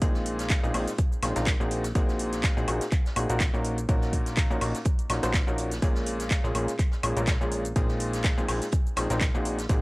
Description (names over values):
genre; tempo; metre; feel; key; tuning
piano house; 124 BPM; 4/4; swing 55% on 16ths; unclear; A4 = 436 Hz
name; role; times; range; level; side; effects
clear upright piano; riff; 0.0-9.8 s; Bb2 to C5; -30 LUFS; equal; sidechain pumping, analog delay
plucky analog bass; bass; 0.0-9.8 s; Bb1; -31 LUFS; equal; sidechain pumping
electronic kick drum; drums; 0.0-9.8 s; none; -25 LUFS; equal; none
house drum kit; drums; 0.0-9.8 s; handclaps, hi-hat, shaker, woodblock; -32 LUFS; equal; overdrive
jazz brush drum kit; drums; 0.0-9.8 s; hi-hat, snare drum; -41 LUFS; right 1 dB; high-pass filter on hats, high-pass filter on snare, high-pass filter on room
room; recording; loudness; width
small room ambience; none; -24 LUFS; side -23 dB against mid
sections
0.0-9.8 A section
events
none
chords
0.0 Fm7/Bb; 1.7 Ab9/Bb; 3.6 Ebm7/Bb; 5.8 Bbm7; 7.8 Fm7/Bb